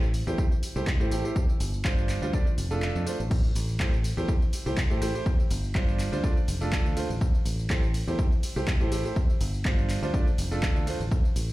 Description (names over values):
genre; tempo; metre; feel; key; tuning
piano house; 123 BPM; 4/4; swing 54% on 16ths; A minor; A4 = 441 Hz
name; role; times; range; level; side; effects
fingered electric bass; bass; 0.0-11.5 s; F1 to A2; -30 LUFS; equal; tube saturation, sidechain pumping
punchy analog drum machine; drums; 0.0-11.5 s; crash cymbal, handclaps, hi-hat, ride cymbal, tambourine; -36 LUFS; equal; overdrive
clear concert grand piano; riff; 0.3-11.0 s; G3 to D5; -32 LUFS; right 2 dB; sidechain pumping, digital delay
electronic kick drum; drums; 0.4-11.2 s; none; -25 LUFS; equal; overdrive
room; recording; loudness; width
digital ambience; played on a big sound system in a bare room, large studio reverb; -24 LUFS; side -18 dB against mid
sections
0.0-11.5 A section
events
kick drops out 2.8-3.3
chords
0.0 Am7; 1.4 G7sus4; 2.3 F6; 3.3 Am7; 5.3 G7sus4; 6.2 F6; 7.2 Am7; 9.2 G7sus4; 10.1 F6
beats
0.38 0.87 | 1.36 1.85 2.33 2.82 | 3.31 3.80 4.29 4.77 | 5.26 5.75 6.24 6.72 | 7.21 7.70 8.19 8.68 | 9.16 9.65 10.14 10.63 | 11.11